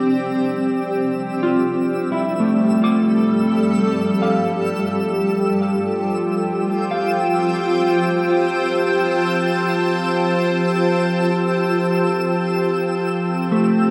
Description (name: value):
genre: ambient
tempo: free time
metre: none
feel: none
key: F major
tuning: A4 = 441 Hz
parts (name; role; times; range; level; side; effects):
- granular cloud pad; sustained chords; 0.0-13.9 s; G3 to A5; -22 LUFS; equal; built-in reverb
- analog drone; drone; 0.0-13.9 s; F3 to G4; -25 LUFS; equal; chorus, phaser
- twinkling granular texture; texture; 0.0-13.9 s; E6; -33 LUFS; equal; built-in reverb
- electric guitar at the edge of break-up; arpeggios; 1.4-13.9 s; A3 to D6; -24 LUFS; equal; spring reverb, delay
room: wet cathedral reverb, RT60 4.9 s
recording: none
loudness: -19 LUFS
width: mono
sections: 0.0-13.9 A section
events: fade-in on synth texture 0.0-13.9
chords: 0.0 Csus24; 1.4 Gsus2; 5.0 Fmaj9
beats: free time